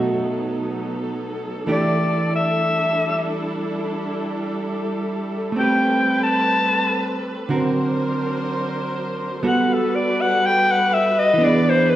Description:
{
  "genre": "jazz ballad",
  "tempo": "62 BPM",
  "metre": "4/4",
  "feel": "swing 69% on 8ths",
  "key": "unclear",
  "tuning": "A4 = 441 Hz",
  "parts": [
    { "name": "hollow-body jazz guitar", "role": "accompaniment", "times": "0.0-12.0 s", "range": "B2 to B4", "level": "-23 LUFS", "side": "right 2 dB", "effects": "none" },
    { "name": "dark studio string section", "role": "sustained chords", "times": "0.0-12.0 s", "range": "E3 to C5", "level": "-25 LUFS", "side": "equal", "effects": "none" },
    { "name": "bright clarinet", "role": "melody", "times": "1.7-12.0 s", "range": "A4 to A5", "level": "-18 LUFS", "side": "left 2 dB", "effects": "none" }
  ],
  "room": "wet recital hall reverb, RT60 1.5 s",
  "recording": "recorded in a church or concert hall",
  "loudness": "-18 LUFS",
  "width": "side -13 dB against mid",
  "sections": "0.0-12.0 A section",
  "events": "clarinet solo 0.0-12.0",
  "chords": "0.0 B7; 1.7 Em7; 5.5 Am9; 7.5 Daug7; 9.4 Gmaj9; 11.4 E7",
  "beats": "0.68 | 1.65 2.62 3.60 4.57 | 5.54 6.51 7.48 8.45 | 9.42 10.39 11.36"
}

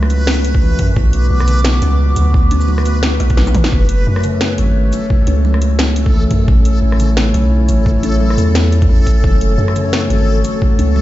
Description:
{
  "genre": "half-time drum and bass",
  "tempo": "174 BPM",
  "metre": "4/4",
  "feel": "swing 57% on 16ths, half-time",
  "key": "F# minor",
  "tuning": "A4 = 441 Hz",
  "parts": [
    { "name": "dark analog pad", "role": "sustained chords", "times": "0.0-11.0 s", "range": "A3 to D6", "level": "-20 LUFS", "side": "left 2 dB", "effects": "chorus, sidechain pumping" },
    { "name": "kalimba", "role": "arpeggios", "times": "0.0-11.0 s", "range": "C#3 to C#4", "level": "-22 LUFS", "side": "right 1 dB", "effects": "ping-pong delay" },
    { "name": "long sustained 808-style bass", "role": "bass", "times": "0.0-11.0 s", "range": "F#1 to F#2", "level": "-14 LUFS", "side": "equal", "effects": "tube saturation" },
    { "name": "drum and bass drum kit", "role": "drums", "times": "0.0-10.9 s", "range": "hi-hat, rim click, shaker, snare drum, toms", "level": "-20 LUFS", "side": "equal", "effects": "none" },
    { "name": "backwards swelling texture", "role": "texture", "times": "0.0-11.0 s", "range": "A4 to B4", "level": "-24 LUFS", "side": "left 2 dB", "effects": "built-in reverb" },
    { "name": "electronic kick drum", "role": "drums", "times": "0.5-10.7 s", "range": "none", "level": "-13 LUFS", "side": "equal", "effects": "overdrive" }
  ],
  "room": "little or no reverb",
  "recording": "played on a big sound system in a bare room, large studio reverb, nothing above 7.7 kHz",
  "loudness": "-11 LUFS",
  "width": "side -15 dB against mid",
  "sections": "0.0-11.0 A section",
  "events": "drum fill 3.4-3.7",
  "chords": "0.0 F#m; 1.0 Bm; 3.7 F#m; 6.5 A; 9.2 F#m",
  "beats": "0.28 0.62 | 0.96 1.31 1.65 2.00 | 2.34 2.69 3.03 3.38 | 3.72 4.07 4.41 4.76 | 5.10 5.45 5.79 6.14 | 6.48 6.83 7.17 7.52 | 7.86 8.21 8.55 8.89 | 9.24 9.59 9.93 10.28 | 10.62 10.96"
}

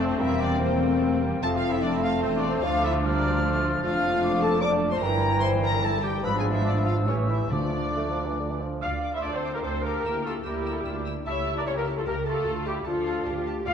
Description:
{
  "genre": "quick classical-period movement for symphony orchestra",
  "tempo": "148 BPM",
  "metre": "3/4",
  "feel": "rubato",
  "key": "D minor from 3.8 s",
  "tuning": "A4 = 440 Hz",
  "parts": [
    { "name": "muted studio violin section", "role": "melody", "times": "0.0-13.7 s", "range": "C5 to E6", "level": "-33 LUFS", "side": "left 4 dB", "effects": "none" },
    { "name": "mellow cor anglais", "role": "second line", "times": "0.0-13.7 s", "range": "F3 to D5", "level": "-33 LUFS", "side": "right 2 dB", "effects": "none" },
    { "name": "muted studio violin section", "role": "second line", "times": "0.0-13.7 s", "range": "G3 to D5", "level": "-36 LUFS", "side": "left 4 dB", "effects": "none" },
    { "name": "silver concert flute", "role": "second line", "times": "0.0-13.7 s", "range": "F4 to F6", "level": "-34 LUFS", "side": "equal", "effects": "none" },
    { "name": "warm clarinet", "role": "second line", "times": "0.0-13.7 s", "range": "C4 to F5", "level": "-33 LUFS", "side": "left 3 dB", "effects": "none" },
    { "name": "muted studio viola section", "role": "accompaniment", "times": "0.0-13.7 s", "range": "D3 to F5", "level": "-32 LUFS", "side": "equal", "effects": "none" },
    { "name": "warm bassoon", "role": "accompaniment", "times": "0.0-8.8 s", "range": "D3 to Bb3", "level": "-32 LUFS", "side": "right 3 dB", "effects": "none" },
    { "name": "muted studio cello section", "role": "bass", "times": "0.0-13.7 s", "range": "D2 to Bb4", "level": "-32 LUFS", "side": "right 3 dB", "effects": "none" },
    { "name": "muted studio double bass section", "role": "bass", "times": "0.0-13.7 s", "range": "E1 to D2", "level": "-32 LUFS", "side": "right 3 dB", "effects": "none" },
    { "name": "mellow French horn section", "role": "sustained chords", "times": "0.1-13.7 s", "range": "A3 to D5", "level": "-31 LUFS", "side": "left 5 dB", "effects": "none" },
    { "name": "timpani", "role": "percussion", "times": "7.5-8.1 s", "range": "D3", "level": "-34 LUFS", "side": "equal", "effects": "none" }
  ],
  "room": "wet scoring stage reverb, RT60 2.0 s",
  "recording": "dark, warm production",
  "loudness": "-23 LUFS",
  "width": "side -7 dB against mid",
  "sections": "0.0-8.8 A section; 8.8-13.7 B section",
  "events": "none",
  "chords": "0.2 C7/E; 1.4 F; 2.6 Dm; 3.8 Dm/F; 5.0 Edim/G; 6.2 G#dim7; 7.1 A7; 7.5 Dm; 10.1 Em7b5/D; 11.3 A7/C#; 12.5 Dm",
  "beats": "| 0.20 0.60 1.01 | 1.42 1.83 2.23 | 2.64 3.04 3.44 | 3.83 4.23 4.63 | 5.03 5.43 5.84 | 6.24 6.65 7.06 | 7.50 7.95 8.39 | 8.83 9.24 9.64 | 10.05 10.45 10.86 | 11.26 11.66 12.06 | 12.46 12.87 13.27 | 13.66"
}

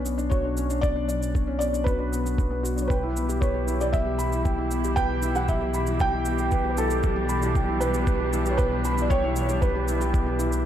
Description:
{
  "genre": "piano and strings electronica",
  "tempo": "116 BPM",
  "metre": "4/4",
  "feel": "straight",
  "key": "unclear",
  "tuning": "A4 = 440 Hz",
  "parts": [
    { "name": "felt-muted upright piano", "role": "riff", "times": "0.0-10.7 s", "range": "B3 to B5", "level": "-28 LUFS", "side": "left 2 dB", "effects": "ping-pong delay" },
    { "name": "dark detuned saw bass", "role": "bass", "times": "0.0-10.7 s", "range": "B1", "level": "-28 LUFS", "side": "equal", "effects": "tube saturation, sidechain pumping" },
    { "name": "shaker", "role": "drums", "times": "0.1-10.6 s", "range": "none", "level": "-40 LUFS", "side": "right 2 dB", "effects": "overdrive" },
    { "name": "felt-muted upright piano", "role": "melody", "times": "0.3-10.6 s", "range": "A4 to G5", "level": "-29 LUFS", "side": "right 1 dB", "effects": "ping-pong delay" },
    { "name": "electronic kick drum", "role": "drums", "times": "0.3-10.2 s", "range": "none", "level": "-25 LUFS", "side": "equal", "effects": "none" },
    { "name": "muted string quartet", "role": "sustained chords", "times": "2.9-10.7 s", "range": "B2 to G4", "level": "-32 LUFS", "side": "right 3 dB", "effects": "none" }
  ],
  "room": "light reverb, studio reverb",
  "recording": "dark, warm production",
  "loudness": "-22 LUFS",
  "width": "side -10 dB against mid",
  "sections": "0.0-10.7 A section",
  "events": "none",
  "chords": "0.0 Bmadd9; 2.9 Em/B",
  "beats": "0.32 | 0.83 1.35 1.87 2.39 | 2.90 3.42 3.94 4.46 | 4.97 5.49 6.01 6.52 | 7.04 7.56 8.08 8.59 | 9.11 9.63 10.14"
}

